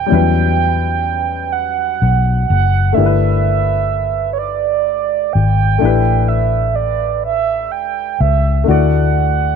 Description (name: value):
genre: slow six-eight R&B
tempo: 42 BPM (dotted quarters)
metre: 6/8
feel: straight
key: E dorian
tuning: A4 = 444 Hz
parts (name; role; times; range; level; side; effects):
- mellow horn-like synth lead; melody; 0.0-9.6 s; C#5 to G5; -17 LUFS; right 14 dB; chorus
- dark baby grand piano; accompaniment; 0.0-9.6 s; F#3 to D5; -21 LUFS; left 16 dB; none
- vintage muted fingered electric bass; bass; 0.0-9.6 s; E1 to E2; -15 LUFS; left 2 dB; none
room: small room ambience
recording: 1960s-style stereo with parts hard left and right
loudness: -13 LUFS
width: side -6 dB against mid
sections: 0.0-9.6 A section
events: none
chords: 0.1 Em69; 2.9 G69; 5.8 A9sus4; 8.7 D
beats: | 0.09 1.52 | 2.95 4.38 | 5.80 7.23 | 8.66